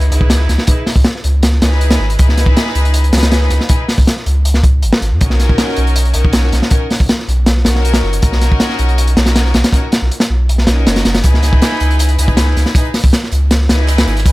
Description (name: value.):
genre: drum and bass, jungle.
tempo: 159 BPM.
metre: 4/4.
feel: straight.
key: C# dorian.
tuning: A4 = 441 Hz.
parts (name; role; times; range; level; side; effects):
rich chamber string section; sustained chords; 0.0-14.3 s; C#4 to B4; -20 LUFS; left 1 dB; none.
saturated sub bass; bass; 0.0-14.3 s; F#1 to F#2; -12 LUFS; equal; tube saturation.
crunchy breakbeat drum kit; drums; 0.0-14.3 s; hi-hat, kick drum, snare drum; -13 LUFS; equal; none.
impact; sound effects; 0.1-0.7 s; none; barely audible; none; none.
big rock drum kit; drums; 11.2-14.3 s; hi-hat, snare drum; -29 LUFS; right 4 dB; none.
room: small room ambience.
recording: none.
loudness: -10 LUFS.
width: side -19 dB against mid.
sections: 0.0-14.3 A section.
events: impact 0.0-0.7; kick drops out 10.5-11.2.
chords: 0.0 C#m7; 5.2 Bmaj7; 11.2 C#m7.